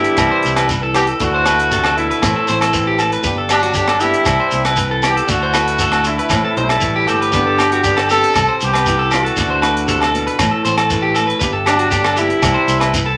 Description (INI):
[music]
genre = highlife guitar band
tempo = 118 BPM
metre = 4/4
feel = straight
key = G major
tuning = A4 = 440 Hz
[part]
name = clear horn section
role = melody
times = 0.0-12.9 s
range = F#3 to A4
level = -20 LUFS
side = equal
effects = none
[part]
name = flamenco guitar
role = accompaniment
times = 0.0-13.2 s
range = G2 to G4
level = -25 LUFS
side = equal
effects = none
[part]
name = electric guitar at the edge of break-up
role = arpeggios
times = 0.0-13.2 s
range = F#4 to C5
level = -22 LUFS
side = equal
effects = none
[part]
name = fingered electric bass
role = bass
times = 0.0-13.2 s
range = G1 to D2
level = -26 LUFS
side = equal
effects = none
[part]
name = tight funk drum kit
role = drums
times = 0.0-13.1 s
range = hi-hat, kick drum, rim click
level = -26 LUFS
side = equal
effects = none
[part]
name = agogo bells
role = percussion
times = 0.2-12.9 s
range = none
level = -23 LUFS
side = equal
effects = none
[part]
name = shekere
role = percussion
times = 0.2-13.1 s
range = none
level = -26 LUFS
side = equal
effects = none
[sound]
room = wet studio ambience, RT60 0.4 s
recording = none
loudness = -15 LUFS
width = mono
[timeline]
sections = 0.0-13.2 A section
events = none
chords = 0.2 C; 1.2 Dadd9; 2.2 Am; 3.2 G; 4.3 C; 5.3 Dadd9; 6.3 Am; 7.3 G; 8.4 C; 9.4 Dadd9; 10.4 Am; 11.4 G; 12.4 C